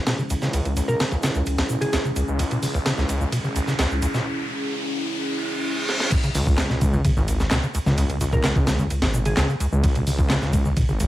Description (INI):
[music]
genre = breakbeat, breaks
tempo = 129 BPM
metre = 4/4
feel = straight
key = unclear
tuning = A4 = 440 Hz
[part]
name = dark analog pad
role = sustained chords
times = 0.0-6.1 s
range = Db4 to Ab4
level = -29 LUFS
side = equal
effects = chorus, vintage 12-bit sampler grit, sidechain pumping
[part]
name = detuned saw bass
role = bass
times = 0.0-11.1 s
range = Ab1 to Db2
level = -25 LUFS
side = equal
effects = high-pass filter
[part]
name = riser and reverse cymbal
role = sound effects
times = 1.4-6.1 s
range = none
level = -30 LUFS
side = equal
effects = none
[part]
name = deep acid bass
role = riff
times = 0.1-11.0 s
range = Db2 to Db3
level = -24 LUFS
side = equal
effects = none
[part]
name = breakbeat sampler-style drum kit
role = drums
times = 0.1-11.1 s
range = crash cymbal, hi-hat, kick drum, ride cymbal, snare drum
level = -24 LUFS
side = equal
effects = high-pass filter on kick, studio reverb, high-pass filter on cymbals, high-pass filter on hats, high-pass filter on snare
[part]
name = electronic shaker and handclaps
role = drums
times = 0.1-11.1 s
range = none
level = -34 LUFS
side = left 1 dB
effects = studio reverb
[part]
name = glassy wavetable pluck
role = melody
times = 0.9-2.0, 8.3-9.4 s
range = Ab4 to Bb4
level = -30 LUFS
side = equal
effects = chorus, old record sound, dub echo
[part]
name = congas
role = percussion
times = 6.4-10.7 s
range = none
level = -31 LUFS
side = left 2 dB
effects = none
[sound]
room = light reverb, digital ambience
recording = vinyl crackle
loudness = -20 LUFS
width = side -15 dB against mid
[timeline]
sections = 0.0-6.1 A section; 6.1-11.1 B section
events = build-up 0.0-6.1; riser 1.4-6.1; break 4.3-6.1; reverse cymbal 5.2-6.1; drum fill 5.9; drop 6.1-11.1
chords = 0.0 Dbm; 6.1 Db5